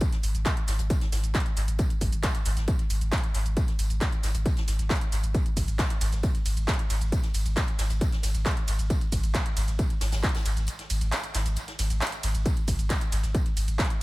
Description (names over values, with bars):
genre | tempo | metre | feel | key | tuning
driving peak-time techno | 135 BPM | 4/4 | straight | unclear | A4 = 440 Hz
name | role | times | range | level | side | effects
electronic kick drum | drums | 0.0-13.9 s | none | -26 LUFS | equal | small room ambience
jazz brush drum kit | drums | 0.0-13.9 s | hi-hat, snare drum, tambourine | -40 LUFS | left 1 dB | sidechain pumping on hats, high-pass filter on hats, small room ambience, high-pass filter on snare, sidechain pumping on perc, high-pass filter on perc, high-pass filter on room, dub echo
techno drum kit | drums | 0.0-14.0 s | handclaps, hi-hat, ride cymbal, shaker | -33 LUFS | right 1 dB | overdrive, small room ambience, sidechain pumping on hats, sidechain pumping on perc, sidechain pumping on cymbals, dub echo
warm sub bass | bass | 0.2-13.8 s | G#1 | -28 LUFS | equal | sidechain pumping, low-pass filter
room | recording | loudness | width
little or no reverb | echo-heavy mix | -24 LUFS | side -20 dB against mid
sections
0.0-14.0 A section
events
kick drops out 10.7-12.5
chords
none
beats
| 0.01 0.46 0.90 1.34 | 1.79 2.23 2.68 3.12 | 3.57 4.01 4.46 4.90 | 5.34 5.79 6.23 6.68 | 7.12 7.57 8.01 8.46 | 8.90 9.35 9.79 10.23 | 10.68 11.12 11.57 12.01 | 12.46 12.90 13.35 13.79